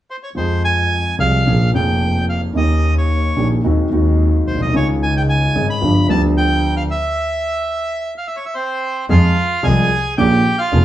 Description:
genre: tango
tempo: 110 BPM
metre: 4/4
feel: rubato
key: F minor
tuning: A4 = 440 Hz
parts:
  - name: bandoneon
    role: melody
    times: 0.1-10.8 s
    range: C4 to B5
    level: -20 LUFS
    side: right 1 dB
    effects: none
  - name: warm concert grand piano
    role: accompaniment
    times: 0.3-10.8 s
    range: F1 to Ab4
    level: -17 LUFS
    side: equal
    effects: none
  - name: rich double bass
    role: bass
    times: 0.4-10.8 s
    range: F1 to F2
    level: -18 LUFS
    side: equal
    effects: none
room: wet studio reverb, RT60 0.6 s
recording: band playing live in one room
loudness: -14 LUFS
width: side -13 dB against mid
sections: 0.4-9.1 A section; 9.1-10.8 B section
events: stop 6.9-9.1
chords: 0.4 Fm; 1.5 Bbm7; 2.6 Eb7; 3.6 Ab7/Eb; 4.7 Dbsus2; 5.8 G7; 6.9 N.C.; 9.1 Fm; 10.2 Bbm7

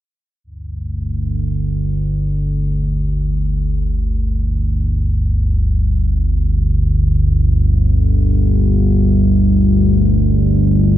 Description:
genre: ambient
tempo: free time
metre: none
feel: none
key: unclear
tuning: A4 = 438 Hz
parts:
  - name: analog drone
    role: solo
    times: 0.4-11.0 s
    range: G1 to D2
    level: -13 LUFS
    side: equal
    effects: chorus
room: light reverb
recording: none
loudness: -13 LUFS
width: side -13 dB against mid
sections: 0.4-11.0 A section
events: none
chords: 0.4 G5

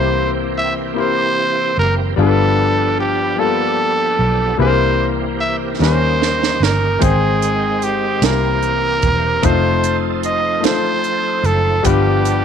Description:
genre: slow gospel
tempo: 50 BPM (dotted quarters)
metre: 6/8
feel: straight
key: unclear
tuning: A4 = 440 Hz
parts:
  - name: growling trumpet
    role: melody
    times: 0.0-12.4 s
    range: G4 to E5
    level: -18 LUFS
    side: right 2 dB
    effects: none
  - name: clear baby grand piano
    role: accompaniment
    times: 0.0-12.4 s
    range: G2 to G5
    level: -20 LUFS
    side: left 11 dB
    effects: none
  - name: bright tonewheel organ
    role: sustained chords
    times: 0.0-12.4 s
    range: Eb3 to G5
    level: -25 LUFS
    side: right 12 dB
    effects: slow rotary speaker, overdrive, chorus vibrato
  - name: vintage muted fingered electric bass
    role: bass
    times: 0.0-12.4 s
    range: E1 to Eb2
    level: -19 LUFS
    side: right 1 dB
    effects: none
  - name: crisp fusion drum kit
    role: drums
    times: 5.8-12.4 s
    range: hi-hat, kick drum, snare drum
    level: -21 LUFS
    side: right 6 dB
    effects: none
room: light reverb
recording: 1960s-style stereo with parts hard left and right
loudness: -14 LUFS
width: side -7 dB against mid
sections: 0.0-12.4 A section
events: drum fill 5.8-7.0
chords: 0.0 C7; 2.2 G7; 4.6 C7; 5.8 Eb7; 7.0 Abmaj7; 8.2 C7; 9.4 F7; 11.9 G7

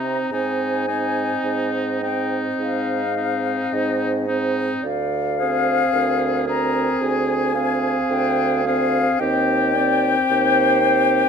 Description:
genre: classical, slow romantic movement for wind quintet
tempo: 52-56 BPM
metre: 4/4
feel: rubato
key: unclear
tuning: A4 = 440 Hz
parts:
  - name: concert flute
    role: melody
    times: 0.0-11.3 s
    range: Eb5 to Bb5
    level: -22 LUFS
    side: left 9 dB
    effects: none
  - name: clear oboe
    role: second line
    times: 0.0-11.3 s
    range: Eb4 to Ab4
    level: -27 LUFS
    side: left 2 dB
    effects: none
  - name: mellow French horn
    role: accompaniment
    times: 0.0-11.3 s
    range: C4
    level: -25 LUFS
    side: equal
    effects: none
  - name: mellow clarinet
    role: accompaniment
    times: 0.0-11.3 s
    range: Ab4 to F5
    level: -26 LUFS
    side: right 12 dB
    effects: none
  - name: warm bassoon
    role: bass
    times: 0.0-11.2 s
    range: D2 to C3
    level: -24 LUFS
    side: right 4 dB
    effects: none
room: light reverb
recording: close, detailed microphones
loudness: -18 LUFS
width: side -6 dB against mid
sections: 0.0-11.3 A section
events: none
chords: 0.3 Ab; 4.8 Dm7b5; 9.2 Cm/Eb

